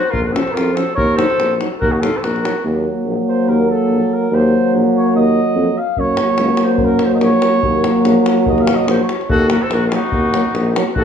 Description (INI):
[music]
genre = balkan folk, Balkan brass band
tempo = 144 BPM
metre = 2/4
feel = swing 56% on 16ths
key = Eb dorian sharp4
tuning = A4 = 440 Hz
[part]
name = mellow flugelhorn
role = melody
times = 0.0-11.0 s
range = Gb4 to F5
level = -19 LUFS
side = right 1 dB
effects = none
[part]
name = clear trumpet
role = second line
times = 0.0-2.6, 9.3-11.0 s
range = Eb4 to Bb4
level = -23 LUFS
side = left 1 dB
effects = none
[part]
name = clear tuba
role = bass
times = 0.1-11.0 s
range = Bb1 to Gb2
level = -19 LUFS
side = left 1 dB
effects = none
[part]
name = davul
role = percussion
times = 0.1-2.5, 6.0-11.0 s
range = none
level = -22 LUFS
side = left 3 dB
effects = none
[part]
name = dark French horn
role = accompaniment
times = 0.3-10.8 s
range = Bb3 to Eb4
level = -18 LUFS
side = left 1 dB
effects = none
[part]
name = warm euphonium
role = accompaniment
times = 0.3-10.8 s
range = F3 to Gb3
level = -21 LUFS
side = right 4 dB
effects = none
[sound]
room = moderate recital hall reverb, RT60 1.4 s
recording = small room ambience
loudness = -13 LUFS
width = side -8 dB against mid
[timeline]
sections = 0.0-2.6 A section; 2.6-9.3 B section; 9.3-11.0 C section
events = flugelhorn solo 2.6-9.3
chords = 0.1 Bbm; 1.0 Ebm; 6.0 Gb; 7.6 Ebm